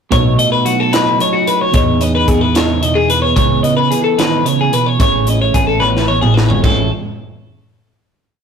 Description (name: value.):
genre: math rock and midwest emo.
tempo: 74 BPM (dotted quarters).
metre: 6/8.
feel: straight.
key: A lydian.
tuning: A4 = 438 Hz.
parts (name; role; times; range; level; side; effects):
twelve-string electric guitar; accompaniment; 0.1-6.9 s; E2 to B4; -17 LUFS; right 5 dB; none.
twelve-string electric guitar; arpeggios; 0.1-6.9 s; F#4 to D#5; -15 LUFS; left 3 dB; none.
modern bright fingered electric bass; bass; 0.1-6.9 s; A1 to E2; -18 LUFS; equal; none.
crisp fusion drum kit; drums; 0.1-6.8 s; china cymbal, hi-hat, kick drum, snare drum, toms; -16 LUFS; equal; none.
room: moderate stone room reverb, RT60 1.3 s.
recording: rough rehearsal-room recording, warm saturation.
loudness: -11 LUFS.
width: side -6 dB against mid.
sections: 0.1-6.6 A section; 6.6-8.3 final chord.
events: drum fill 5.8-6.6.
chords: 0.1 B7; 1.7 Emaj7; 3.4 C#m7; 5.0 Amaj7.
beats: | 0.12 0.93 | 1.74 2.56 | 3.37 4.18 | 5.00 5.82 | 6.63.